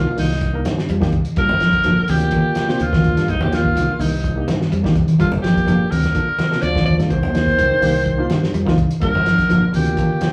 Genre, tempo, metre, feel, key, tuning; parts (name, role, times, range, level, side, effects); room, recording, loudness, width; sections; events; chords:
afrobeat; 126 BPM; 4/4; straight; G minor; A4 = 444 Hz
raspy alto saxophone; melody; 0.0-10.3 s; Eb4 to D5; -23 LUFS; equal
breathy trombone; second line; 0.0-10.3 s; G2 to F3; -30 LUFS; equal
clean electric guitar; arpeggios; 0.0-10.2 s; C3 to G3; -24 LUFS; equal
modern bright fingered electric bass; bass; 0.0-10.0 s; G1 to G2; -25 LUFS; equal
barky reed electric piano; accompaniment; 0.2-10.1 s; Bb3 to C5; -30 LUFS; equal; overdrive
cloth-damped thuddy drum kit; drums; 0.2-10.3 s; hi-hat, kick drum, snare drum; -27 LUFS; equal
congas; percussion; 0.2-10.3 s; -24 LUFS; equal
wet large studio reverb, RT60 0.9 s; band playing live in one room; -17 LUFS; mono
0.0-10.3 A section
0.0 Cm7; 1.4 Gm7; 3.3 Cm7; 5.2 Gm7; 7.1 Cm7; 9.0 Gm7